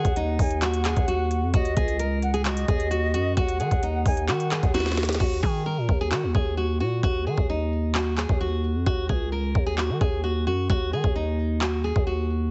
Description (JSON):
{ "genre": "hip hop, trap", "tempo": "131 BPM", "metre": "4/4", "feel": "half-time", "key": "Eb minor", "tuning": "A4 = 439 Hz", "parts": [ { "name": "nylon-string guitar", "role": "melody", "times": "0.0-12.5 s", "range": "Eb4 to Bb4", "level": "-31 LUFS", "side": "equal", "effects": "delay" }, { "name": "mellow jazz flute", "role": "second line", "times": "0.0-4.7 s", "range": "Eb5 to Ab5", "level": "-33 LUFS", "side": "equal", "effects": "delay" }, { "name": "growling 808-style bass", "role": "bass", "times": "0.0-12.5 s", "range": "Db2 to Eb3", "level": "-28 LUFS", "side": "equal", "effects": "none" }, { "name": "trap drum kit", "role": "drums", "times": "0.0-12.1 s", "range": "crash cymbal, handclaps, hi-hat, kick drum, snare drum", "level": "-28 LUFS", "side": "equal", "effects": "none" } ], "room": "digital ambience", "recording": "heavily compressed radio sound, nothing above 8.0 kHz", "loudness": "-25 LUFS", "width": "mono", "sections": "0.0-5.2 A section; 5.2-12.5 B section", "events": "drum fill 4.7-5.2; hi-hats muted 5.2-12.5", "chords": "0.0 Ebm" }